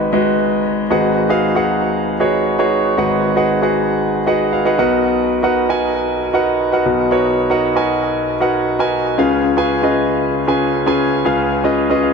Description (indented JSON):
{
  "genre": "pop",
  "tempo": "116 BPM",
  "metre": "4/4",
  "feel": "straight",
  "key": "unclear",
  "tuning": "A4 = 440 Hz",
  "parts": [
    { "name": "warm concert grand piano", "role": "solo", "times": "0.0-12.1 s", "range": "G#1 to G#5", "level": "-14 LUFS", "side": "equal", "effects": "tape echo" }
  ],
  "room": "moderate lush hall reverb, RT60 2.7 s",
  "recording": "dark, warm production",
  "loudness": "-14 LUFS",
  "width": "side -5 dB against mid",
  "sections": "0.9-12.1 A section",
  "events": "grand piano fill 4.0-5.0, 11.8-12.1",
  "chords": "0.0 G#m7; 4.8 Bmaj7; 9.2 C#7",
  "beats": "0.39 | 0.91 1.43 1.94 2.46 | 2.98 3.49 4.01 4.53 | 5.05 5.56 6.08 6.60 | 7.12 7.63 8.15 8.67 | 9.18 9.70 10.22 10.73 | 11.25 11.77"
}